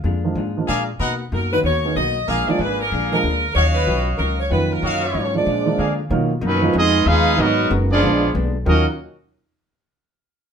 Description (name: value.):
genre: jazz.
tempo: 188 BPM.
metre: 4/4.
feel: swing 64% on 8ths.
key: Eb minor.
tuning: A4 = 441 Hz.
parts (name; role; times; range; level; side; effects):
vintage hollow-body jazz guitar; accompaniment; 0.0-8.8 s; Bb2 to Bb4; -28 LUFS; left 4 dB; none.
upright bass; bass; 0.0-8.8 s; Gb1 to D3; -22 LUFS; left 1 dB; none.
warm grand piano; accompaniment; 0.2-8.8 s; D#3 to Bb4; -23 LUFS; right 4 dB; none.
clear trumpet section; stabs; 0.7-5.9 s; Gb4 to F#5; -24 LUFS; equal; none.
warm saxophone section; melody; 1.3-6.0 s; Bb4 to F5; -22 LUFS; equal; none.
clear trombone section; second line; 5.3-8.8 s; Eb3 to Gb4; -21 LUFS; right 3 dB; none.
clear trumpet section; melody; 6.5-8.9 s; F#3 to F5; -19 LUFS; equal; none.
room: wet studio reverb, RT60 0.6 s.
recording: band playing live in one room.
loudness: -16 LUFS.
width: side -7 dB against mid.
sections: 0.0-6.1 A section; 6.1-8.7 B section; 8.7-9.9 C section.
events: none.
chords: 0.0 Bb7; 1.0 Bmaj7; 2.3 Bb7; 3.6 Ebm9; 5.5 Bb7; 6.1 Bmaj9#11; 6.7 Fm7b5; 7.4 Abm9; 8.0 Bb7b9; 8.7 Ebm9.